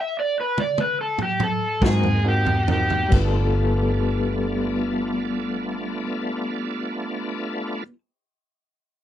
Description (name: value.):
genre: slow blues.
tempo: 45-51 BPM (dotted quarters).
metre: 12/8.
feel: straight.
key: G mixolydian.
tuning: A4 = 436 Hz.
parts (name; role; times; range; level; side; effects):
overdriven slide guitar; melody; 0.0-3.1 s; G4 to E5; -23 LUFS; equal; none.
swinging big-band drum kit; drums; 0.6-3.3 s; crash cymbal, kick drum, snare drum, toms; -24 LUFS; right 1 dB; none.
electric guitar through a small old amp; accompaniment; 1.8-8.0 s; G3 to Bb4; -26 LUFS; left 2 dB; tremolo.
warm grand piano; accompaniment; 1.8-7.8 s; B3 to Bb4; -32 LUFS; right 3 dB; none.
bright tonewheel organ; sustained chords; 1.8-7.8 s; A3 to Gb5; -29 LUFS; equal; slow rotary speaker, overdrive, chorus vibrato.
vintage muted fingered electric bass; bass; 1.8-7.8 s; G1 to Ab2; -23 LUFS; equal; none.
room: little or no reverb.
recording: none.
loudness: -20 LUFS.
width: side -11 dB against mid.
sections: 0.0-3.1 A section; 3.1-8.5 B section.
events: drum fill 0.0-3.1; slowing down 0.0-3.1; electric slide guitar solo 0.0-3.1; stop 0.0-1.8.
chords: 0.0 Gadd9 (rootless); 1.8 Ab9; 3.1 G9.